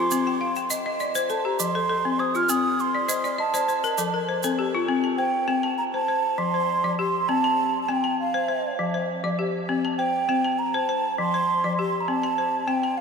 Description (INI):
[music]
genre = west african traditional, West African string and xylophone music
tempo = 100 BPM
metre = 4/4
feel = straight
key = C dorian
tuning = A4 = 440 Hz
[part]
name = mellow hollow concert flute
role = melody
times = 0.0-13.0 s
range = F5 to F6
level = -25 LUFS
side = right 4 dB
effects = tape echo
[part]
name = balafon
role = arpeggios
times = 0.0-13.0 s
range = F3 to A5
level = -25 LUFS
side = left 5 dB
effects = none
[part]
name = egg shaker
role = percussion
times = 0.1-4.6 s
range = none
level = -31 LUFS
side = right 9 dB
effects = none
[sound]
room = wet huge ambient reverb, RT60 4.8 s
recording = dreamy mix soaked in reverb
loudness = -22 LUFS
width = side -5 dB against mid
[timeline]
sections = 0.0-4.9 A section; 4.9-13.0 B section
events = flute solo 0.0-4.9; balafon fill 2.9-4.9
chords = 0.1 Cm; 1.3 F; 2.5 Cm; 3.7 F; 4.9 C5; 6.1 F5; 7.3 C5; 8.5 F5; 9.7 C5; 10.9 F5; 12.1 C5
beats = | 0.10 0.70 1.29 1.89 | 2.49 3.08 3.68 4.28 | 4.88 5.48 6.08 6.68 | 7.28 7.88 8.48 9.08 | 9.68 10.28 10.88 11.48 | 12.08 12.68